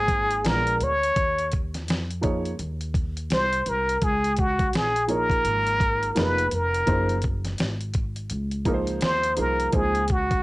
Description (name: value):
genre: hip hop, jazz-hop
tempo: 84 BPM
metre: 4/4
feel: swing 62% on 16ths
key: Db major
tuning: A4 = 440 Hz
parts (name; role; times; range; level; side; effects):
- trumpet with plunger mute; melody; 0.0-10.4 s; Gb4 to Db5; -23 LUFS; equal; cassette tape
- warm upright piano; accompaniment; 0.0-10.0 s; F3 to Db5; -28 LUFS; right 1 dB; none
- upright bass; bass; 0.0-10.4 s; F1 to F2; -29 LUFS; equal; none
- dusty soul sampler-style drum kit; drums; 0.1-10.4 s; hi-hat, kick drum, snare drum; -27 LUFS; equal; cassette tape
room: light reverb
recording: home recording on cassette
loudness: -22 LUFS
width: side -20 dB against mid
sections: 0.0-10.4 A section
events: none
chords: 0.4 Bb7b9; 1.2 Ebsus2; 4.0 Db69; 6.9 Gbmaj9; 9.7 Dbmaj7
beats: 0.45 | 1.16 1.88 2.59 3.31 | 4.02 4.74 5.45 6.16 | 6.88 7.59 8.31 9.02 | 9.73